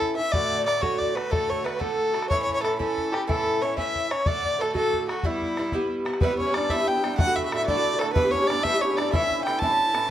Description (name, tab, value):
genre	celtic folk, Celtic jig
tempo	123 BPM (dotted quarters)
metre	6/8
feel	straight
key	E dorian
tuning	A4 = 440 Hz
part	warm fiddle	melody	0.0-10.1 s	E4 to A5	-25 LUFS	equal	plate reverb
part	mellow hollow wooden flute	second line	0.0-10.1 s	E4 to A5	-30 LUFS	left 5 dB	none
part	Irish bouzouki	accompaniment	0.0-10.1 s	G2 to G4	-28 LUFS	right 2 dB	none
part	bodhran	percussion	0.0-10.0 s	none	-29 LUFS	left 1 dB	none
part	hammered dulcimer	second line	6.2-10.1 s	A3 to A4	-30 LUFS	right 6 dB	none
room	moderate studio reverb, RT60 0.5 s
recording	dark, warm production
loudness	-22 LUFS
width	side -11 dB against mid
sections	0.0-6.2 A section; 6.2-10.1 B section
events	none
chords	0.3 D; 2.3 A; 4.3 D; 5.2 Em; 7.2 D; 8.2 Em; 9.1 A